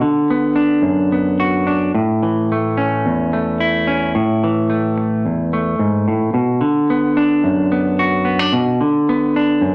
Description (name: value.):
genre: highlife.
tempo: 109 BPM.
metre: 4/4.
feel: swing 54% on 16ths.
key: unclear.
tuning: A4 = 441 Hz.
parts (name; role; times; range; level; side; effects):
semi-hollow electric guitar; solo; 0.0-9.7 s; E2 to F#4; -17 LUFS; equal; none.
room: moderate large studio reverb, RT60 0.9 s.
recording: none.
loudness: -17 LUFS.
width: mono.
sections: 0.0-9.7 A section.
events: none.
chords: 0.0 Bm; 1.9 A; 6.3 Bm.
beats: 0.29 0.84 1.40 | 1.95 2.49 3.04 3.59 | 4.14 4.69 5.24 5.79 | 6.34 6.89 7.44 7.99 | 8.54 9.09 9.64.